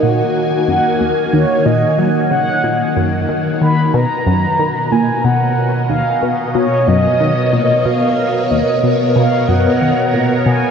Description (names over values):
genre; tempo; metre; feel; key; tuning
ambient, sequencer-driven space music; 92 BPM; 4/4; straight; unclear; A4 = 440 Hz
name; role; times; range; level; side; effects
mellow horn-like synth lead; melody; 0.0-10.7 s; Db5 to Cb6; -17 LUFS; equal; wide subtle chorus, ping-pong delay
phased string machine; sustained chords; 0.0-10.7 s; B2 to Ab5; -16 LUFS; equal; ensemble chorus, phaser
tight sequenced synth; riff; 0.0-10.7 s; Eb2 to Gb3; -17 LUFS; left 1 dB; chorus, phaser, ping-pong delay
room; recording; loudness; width
wet huge ambient reverb, RT60 7.8 s; worn, warbling old tape, cassette tape, warbly pitch drift; -12 LUFS; side -7 dB against mid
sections
0.0-10.7 A section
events
none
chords
0.0 Ebm; 3.9 Bmaj7